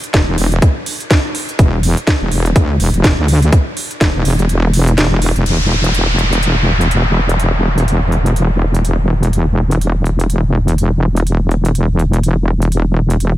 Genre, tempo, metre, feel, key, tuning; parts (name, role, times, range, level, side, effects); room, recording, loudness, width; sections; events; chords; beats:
bass house; 124 BPM; 4/4; swing 58% on 16ths; A4 = 440 Hz
garage drum kit; drums; 0.0-13.3 s; crash cymbal, hi-hat, snare drum; -20 LUFS; right 1 dB
wobble bass; bass; 0.1-13.4 s; E1 to D2; -13 LUFS; equal; chorus, tube saturation, sidechain pumping
electronic kick drum; drums; 0.1-4.1 s; -13 LUFS; equal
downlifter; sound effects; 5.5-9.3 s; -20 LUFS; equal
little or no reverb; -12 LUFS; side -14 dB against mid
0.0-5.5 A section; 5.5-13.4 B section
kick drops out 4.5-5.5
0.14 0.62 1.11 | 1.59 2.07 2.56 3.04 | 3.52 4.01 4.49 4.98 | 5.46 5.94 6.43 6.91 | 7.40 7.88 8.36 8.85 | 9.33 9.81 10.30 10.78 | 11.27 11.75 12.23 12.72 | 13.20